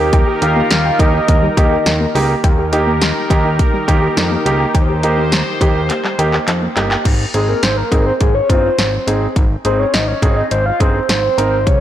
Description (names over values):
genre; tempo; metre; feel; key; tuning
synth-pop; 104 BPM; 4/4; straight; Ab major; A4 = 440 Hz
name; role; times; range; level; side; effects
warm concert grand piano; accompaniment; 0.0-11.6 s; Bb3 to Bb4; -19 LUFS; right 2 dB; none
brassy analog pad; sustained chords; 0.0-7.0 s; Eb3 to C5; -21 LUFS; equal; chorus
fat analog bass; bass; 0.0-11.8 s; G1 to F2; -18 LUFS; equal; none
soft round pluck; arpeggios; 0.1-7.0 s; G3 to G5; -24 LUFS; left 2 dB; chorus, digital delay
house drum kit; drums; 0.1-11.8 s; crash cymbal, handclaps, hi-hat, kick drum, snare drum; -16 LUFS; equal; none
soft octave-layered synth lead; melody; 0.4-2.1, 7.3-11.8 s; Ab4 to F5; -18 LUFS; left 1 dB; chorus, phaser, digital delay
room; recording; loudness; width
moderate scoring stage reverb, RT60 1.9 s, digital ambience; blown-out, overdriven recording, overdrive; -12 LUFS; side -11 dB against mid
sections
0.0-2.4 A section; 2.4-7.1 B section; 7.1-11.8 C section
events
drum fill 5.9-7.1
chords
0.0 Eb; 7.1 Ab